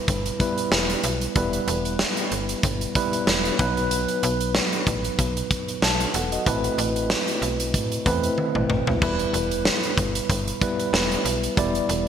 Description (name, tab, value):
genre	1980s-style pop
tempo	94 BPM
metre	4/4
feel	swing 55% on 16ths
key	E minor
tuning	A4 = 440 Hz
part	tine electric piano	accompaniment	0.0-12.1 s	F#3 to A5	-25 LUFS	equal	medium stereo tremolo
part	slap-like FM bass	bass	0.1-12.1 s	E1 to A2	-28 LUFS	equal	none
part	big rock drum kit	drums	0.1-12.1 s	hi-hat, kick drum, snare drum, splash cymbal, toms	-24 LUFS	equal	gated reverb
room	moderate lush hall reverb, RT60 2.7 s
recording	bright 1980s-style digital production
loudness	-21 LUFS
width	side -8 dB against mid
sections	0.0-12.1 A section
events	drum fill 8.4-9.0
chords	0.0 Em; 3.6 B; 6.5 Amadd9; 9.0 Em